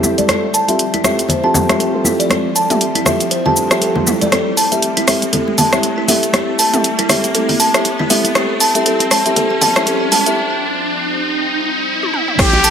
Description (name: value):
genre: afro house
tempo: 119 BPM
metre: 4/4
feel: swing 58% on 16ths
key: unclear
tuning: A4 = 440 Hz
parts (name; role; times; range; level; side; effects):
- ethereal airy pad; sustained chords; 0.0-12.7 s; F3 to C4; -24 LUFS; equal; ensemble chorus, built-in reverb, sidechain pumping
- buzzing kalimba; arpeggios; 0.0-12.7 s; E4 to A5; -17 LUFS; left 1 dB; sidechain pumping, low-pass filter, tape echo
- felt-muted upright piano; stabs; 0.0-12.5 s; A3 to G4; -20 LUFS; right 2 dB; sidechain pumping, tape echo
- deep house drum kit; drums; 0.0-12.7 s; crash cymbal, hi-hat, rim click, shaker, toms; -16 LUFS; equal; overdrive, high-pass filter on perc, high-pass filter on snare, high-pass filter on hats, high-pass filter on toms, high-pass filter on cymbals
- congas; percussion; 0.0-10.2 s; none; -22 LUFS; left 2 dB; none
- riser and downlifter; sound effects; 0.8-12.7 s; none; -22 LUFS; equal; none
- woody FM bass; bass; 0.3-12.7 s; none; barely audible; none; none
- trumpet with plunger mute; melody; 12.4-12.7 s; G4; -14 LUFS; equal; none
- electronic kick drum; drums; 12.4-12.5 s; none; -16 LUFS; equal; overdrive
- djembe; percussion; 12.5-12.6 s; none; -19 LUFS; right 1 dB; none
room: moderate plate reverb, RT60 1.3 s, small room ambience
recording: high-pass filter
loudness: -12 LUFS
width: side -8 dB against mid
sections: 0.0-12.4 A section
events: build-up 0.0-12.4; filter sweep on kalimba 0.0-12.4; riser 0.8-12.4; break 10.4-12.4; drum fill 12.0-12.4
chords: 0.3 G9sus4; 4.3 Am7; 8.4 G9sus4